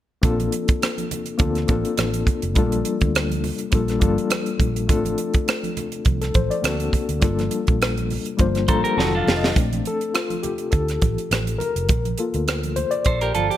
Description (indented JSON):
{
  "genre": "lush 1970s-style soul",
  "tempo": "103 BPM",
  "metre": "4/4",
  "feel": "swing 54% on 16ths",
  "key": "Bb major",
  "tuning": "A4 = 442 Hz",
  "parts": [
    { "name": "mellow reed electric piano", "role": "accompaniment", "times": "0.2-13.6 s", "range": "Eb3 to Bb5", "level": "-24 LUFS", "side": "left 5 dB", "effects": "fast tremolo" },
    { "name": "vintage muted fingered electric bass", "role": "bass", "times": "0.2-13.5 s", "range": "F1 to D2", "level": "-25 LUFS", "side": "right 1 dB", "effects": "none" },
    { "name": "tight funk drum kit", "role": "drums", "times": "0.2-13.6 s", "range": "hi-hat, kick drum, rim click, snare drum", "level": "-22 LUFS", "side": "right 1 dB", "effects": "none" },
    { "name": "congas", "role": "percussion", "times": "0.2-13.5 s", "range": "none", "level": "-32 LUFS", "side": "right 9 dB", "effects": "none" },
    { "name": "clean electric guitar", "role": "riff", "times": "8.7-9.5, 13.1-13.6 s", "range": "D4 to C5", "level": "-24 LUFS", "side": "right 5 dB", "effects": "spring reverb" }
  ],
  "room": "light reverb, small room ambience",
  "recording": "none",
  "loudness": "-19 LUFS",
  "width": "side -12 dB against mid",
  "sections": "0.2-9.6 A section; 9.6-13.6 B section",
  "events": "reed electric piano fill 8.4-9.6; drum fill 9.0-9.6; reed electric piano solo 9.6-13.6",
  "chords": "0.2 Bbmaj7; 2.6 Gm9/Bb; 4.9 Dm7/A; 6.6 D7b13; 7.2 Gm9; 9.0 F7b9; 9.6 Bbmaj7; 11.9 Gm9/Bb"
}